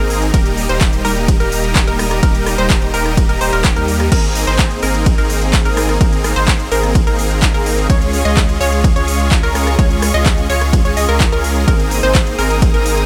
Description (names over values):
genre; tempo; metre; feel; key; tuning
EDM, festival progressive house; 127 BPM; 4/4; straight; Ab major; A4 = 440 Hz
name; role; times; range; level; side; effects
rich chamber string section; sustained chords; 0.0-13.1 s; G4 to Eb6; -28 LUFS; equal; sidechain pumping
unison pluck; arpeggios; 0.0-13.1 s; Bb4 to Eb5; -24 LUFS; equal; sidechain pumping, tape echo
supersaw chords; riff; 0.0-13.1 s; G3 to Eb5; -22 LUFS; equal; analog chorus, sidechain pumping, tape echo
saturated sub bass; bass; 0.0-13.1 s; Eb1 to Eb2; -21 LUFS; equal; sidechain pumping
big-room dance drum kit; drums; 0.1-13.1 s; crash cymbal, handclaps, hi-hat, ride cymbal, rim click; -24 LUFS; equal; none
electronic kick drum; drums; 0.3-12.7 s; none; -16 LUFS; equal; none
room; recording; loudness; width
light reverb; none; -14 LUFS; mono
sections
0.0-13.1 A section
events
none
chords
0.3 Eb; 4.1 Abadd9; 7.9 Db; 11.7 Abadd9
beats
| 0.34 0.81 1.28 1.75 | 2.23 2.70 3.17 3.65 | 4.12 4.59 5.06 5.54 | 6.01 6.48 6.95 7.42 | 7.90 8.37 8.84 9.31 | 9.79 10.26 10.73 11.20 | 11.68 12.15 12.62